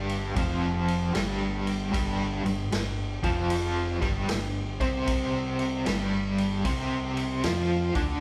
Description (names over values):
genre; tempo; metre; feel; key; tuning
blues rock power trio and southern rock; 76 BPM; 4/4; swing 66% on 8ths; unclear; A4 = 439 Hz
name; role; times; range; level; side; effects
overdriven electric guitar; riff; 0.0-8.2 s; F2 to F4; -30 LUFS; equal; tremolo
fuzz fingered electric bass; bass; 0.0-8.2 s; F1 to F2; -35 LUFS; equal; overdrive
vintage drum kit; drums; 0.1-8.1 s; kick drum, ride cymbal, snare drum; -35 LUFS; equal; none
room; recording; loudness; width
wet large studio reverb, RT60 0.8 s; band playing live in one room; -28 LUFS; mono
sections
0.0-8.2 A section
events
none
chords
0.0 G5